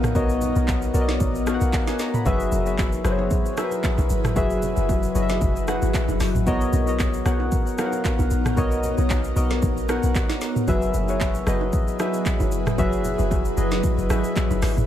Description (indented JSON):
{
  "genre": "amapiano",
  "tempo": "114 BPM",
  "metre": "4/4",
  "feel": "swing 55% on 16ths",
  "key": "B major",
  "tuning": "A4 = 439 Hz",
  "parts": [
    { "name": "soft electric-piano-like synth keys", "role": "accompaniment", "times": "0.0-14.9 s", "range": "F#3 to B5", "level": "-25 LUFS", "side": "left 2 dB", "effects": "chorus, analog delay" },
    { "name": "ethereal airy pad", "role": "sustained chords", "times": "0.0-14.8 s", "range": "F#3 to B4", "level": "-30 LUFS", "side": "equal", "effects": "ensemble chorus, built-in reverb, sidechain pumping" },
    { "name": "deep log drum bass", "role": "bass", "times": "0.0-14.9 s", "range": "F#1 to B1", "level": "-24 LUFS", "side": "equal", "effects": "none" },
    { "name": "afro-pop drum kit", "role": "drums", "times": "0.0-14.9 s", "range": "handclaps, hi-hat, kick drum, rim click, shaker, snare drum, toms", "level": "-25 LUFS", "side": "equal", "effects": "none" },
    { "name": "congas and bongos", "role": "percussion", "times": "0.2-14.6 s", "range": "none", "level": "-35 LUFS", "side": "right 7 dB", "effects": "none" }
  ],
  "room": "little or no reverb",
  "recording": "echo-heavy mix",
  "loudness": "-20 LUFS",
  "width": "side -11 dB against mid",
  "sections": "0.0-14.9 A section",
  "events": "none",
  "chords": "0.0 Bmaj9; 2.3 F#9sus4; 6.5 Bmaj9; 10.7 F#9sus4",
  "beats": "| 0.15 0.68 1.21 1.73 | 2.26 2.78 3.31 3.84 | 4.36 4.89 5.42 5.94 | 6.47 7.00 7.52 8.05 | 8.57 9.10 9.63 10.15 | 10.68 11.21 11.73 12.26 | 12.78 13.31 13.84 14.36"
}